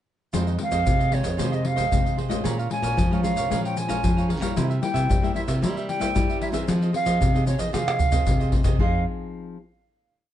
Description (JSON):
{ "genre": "samba and choro", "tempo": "114 BPM", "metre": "4/4", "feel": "straight", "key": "F minor", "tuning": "A4 = 440 Hz", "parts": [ { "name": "cavaquinho", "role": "accompaniment", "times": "0.3-9.0 s", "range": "E4 to Bb5", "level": "-33 LUFS", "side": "right 8 dB", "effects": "none" }, { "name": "nylon-string guitar", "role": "accompaniment", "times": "0.3-9.6 s", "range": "F2 to Ab4", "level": "-31 LUFS", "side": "left 5 dB", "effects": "none" }, { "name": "nylon-string guitar", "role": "bass", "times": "0.3-9.0 s", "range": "F2 to G3", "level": "-25 LUFS", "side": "equal", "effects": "none" }, { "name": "tube shaker, surdo, pandeiro and tamborim", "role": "percussion", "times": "0.3-8.9 s", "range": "none", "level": "-25 LUFS", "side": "left 1 dB", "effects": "none" }, { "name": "silver concert flute", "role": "melody", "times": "0.6-9.0 s", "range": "Db5 to Ab5", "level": "-27 LUFS", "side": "right 2 dB", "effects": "plate reverb" } ], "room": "light reverb", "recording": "dark, warm production, nothing above 10.8 kHz", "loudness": "-21 LUFS", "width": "side -11 dB against mid", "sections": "0.3-8.8 A section; 8.8-10.3 final chord", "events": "drum fill 7.7-8.8", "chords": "0.3 Fm7; 2.5 Bbm7; 4.6 C7; 6.7 Fm7" }